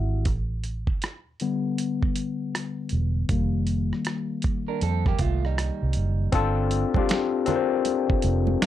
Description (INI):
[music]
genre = R&B, neo-soul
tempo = 79 BPM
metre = 4/4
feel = swing 64% on 16ths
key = unclear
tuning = A4 = 440 Hz
[part]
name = overdriven tine electric piano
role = accompaniment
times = 0.0-8.7 s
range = D3 to F#5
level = -26 LUFS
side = left 6 dB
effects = lush chorus
[part]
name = vintage muted fingered electric bass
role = bass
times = 0.0-8.5 s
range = E1 to F2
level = -25 LUFS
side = right 1 dB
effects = none
[part]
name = dusty soul sampler-style drum kit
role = drums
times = 0.3-8.7 s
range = finger snaps, hi-hat, kick drum, rim click, snare drum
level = -26 LUFS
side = right 1 dB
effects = none
[part]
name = electric guitar through a small old amp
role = second line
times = 4.7-6.3 s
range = G3 to Bb4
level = -31 LUFS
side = right 12 dB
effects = none
[part]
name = congas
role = percussion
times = 6.3-8.7 s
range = none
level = -32 LUFS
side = right 10 dB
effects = none
[sound]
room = little or no reverb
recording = dark, warm production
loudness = -23 LUFS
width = side -12 dB against mid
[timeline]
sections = 0.0-6.3 A section; 6.3-8.7 B section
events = tine electric piano solo 0.0-6.3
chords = 0.3 A9sus4; 3.3 F9sus4; 6.3 G9sus4